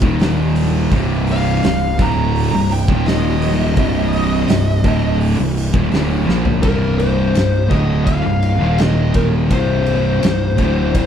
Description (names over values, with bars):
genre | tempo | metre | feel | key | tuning
stoner and doom metal | 84 BPM | 4/4 | straight | C minor | A4 = 439 Hz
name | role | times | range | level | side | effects
distorted electric guitar | riff | 0.0-11.1 s | C2 to Bb3 | -24 LUFS | left 1 dB | overdrive
thick fuzz guitar | riff | 0.0-11.1 s | C2 to Bb3 | -21 LUFS | left 8 dB | distortion
thick fuzz guitar | riff | 0.0-11.1 s | C2 to Bb3 | -20 LUFS | right 7 dB | distortion
fuzz picked electric bass | bass | 0.0-11.1 s | C1 to Bb1 | -20 LUFS | equal | overdrive
oversized low-tuned drum kit | drums | 0.0-11.1 s | hi-hat, kick drum, ride cymbal, snare drum, toms | -20 LUFS | equal | none
fuzz lead guitar | melody | 1.3-11.1 s | Bb4 to Bb5 | -22 LUFS | left 2 dB | distortion, slapback echo
room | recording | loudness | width
little or no reverb | none | -13 LUFS | side -8 dB against mid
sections
0.0-6.6 A section; 6.6-11.1 B section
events
lead electric guitar solo 0.0-6.6; drum fill 6.3-6.6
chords
0.0 Eb5; 0.9 C5; 2.9 Eb5; 3.8 Cm; 6.6 C5; 8.6 Eb5; 9.5 C5